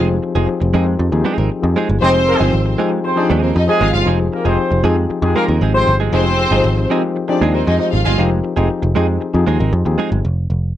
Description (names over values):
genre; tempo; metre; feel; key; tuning
disco; 117 BPM; 4/4; straight; unclear; A4 = 443 Hz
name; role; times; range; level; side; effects
barky reed electric piano; accompaniment; 0.0-10.3 s; F3 to Bb4; -19 LUFS; left 5 dB; overdrive, fast tremolo
direct-recorded clean electric guitar; accompaniment; 0.0-10.2 s; Ab3 to Bb4; -22 LUFS; right 7 dB; wide subtle chorus
picked electric bass; bass; 0.0-10.7 s; F1 to F2; -16 LUFS; right 1 dB; none
dark symphonic string section; second line; 2.0-8.2 s; C4 to F5; -18 LUFS; equal; none
mellow horn section; stabs; 2.0-5.9 s; Ab3 to C5; -17 LUFS; equal; none
room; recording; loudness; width
little or no reverb; dry, close 1970s-style studio recording; -13 LUFS; side -12 dB against mid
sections
0.0-10.2 A section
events
none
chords
0.0 Fm7; 10.2 F5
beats
0.48 0.99 1.50 | 2.02 2.53 3.04 3.56 | 4.07 4.58 5.10 5.61 | 6.13 6.64 7.15 7.67 | 8.18 8.70 9.21 9.72 | 10.24